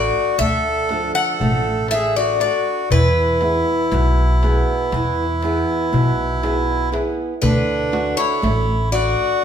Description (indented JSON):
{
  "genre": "greek folk, Greek bouzouki band",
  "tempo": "120 BPM (eighths)",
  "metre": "9/8",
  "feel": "straight",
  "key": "unclear",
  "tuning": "A4 = 439 Hz",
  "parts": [
    { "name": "Greek bouzouki", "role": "melody", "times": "0.0-9.4 s", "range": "B4 to F#5", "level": "-20 LUFS", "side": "left 4 dB", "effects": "none" },
    { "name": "accordion", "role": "second line", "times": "0.0-9.4 s", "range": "D4 to A4", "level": "-23 LUFS", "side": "right 2 dB", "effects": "none" },
    { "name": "flamenco guitar", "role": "accompaniment", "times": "0.0-9.4 s", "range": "B2 to F5", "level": "-23 LUFS", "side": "right 2 dB", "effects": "none" },
    { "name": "upright bass", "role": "bass", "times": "0.0-9.1 s", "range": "A1 to E2", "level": "-21 LUFS", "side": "equal", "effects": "none" },
    { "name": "darbuka", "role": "percussion", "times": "0.4-9.2 s", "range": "none", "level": "-24 LUFS", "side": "left 2 dB", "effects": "none" }
  ],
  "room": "wet large studio reverb, RT60 1.3 s",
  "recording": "band playing live in one room",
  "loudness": "-16 LUFS",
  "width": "side -8 dB against mid",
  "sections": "0.0-9.4 A section",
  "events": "none",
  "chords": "0.0 Dm; 2.9 E; 7.4 D"
}